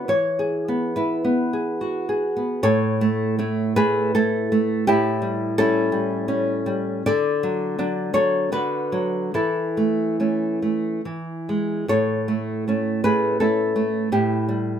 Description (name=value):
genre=romantic piece for solo classical guitar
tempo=68-88 BPM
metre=3/4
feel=rubato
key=A major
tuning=A4 = 440 Hz
part: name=nylon-string guitar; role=solo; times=0.0-14.8 s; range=A2 to D5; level=-20 LUFS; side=equal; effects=none
room=light reverb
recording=none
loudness=-20 LUFS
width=side -8 dB against mid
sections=0.0-2.6 A section; 2.6-14.8 B section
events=none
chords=0.1 E; 2.6 A; 4.9 A7; 7.1 D; 8.5 Bm/D; 9.3 A/E; 11.0 E; 11.9 A; 14.1 A7(no3)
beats=| 0.09 0.96 1.81 | 2.64 3.39 4.15 | 4.88 5.57 6.26 | 7.05 7.78 8.52 | 9.35 10.19 11.04 | 11.88 12.67 13.39 | 14.12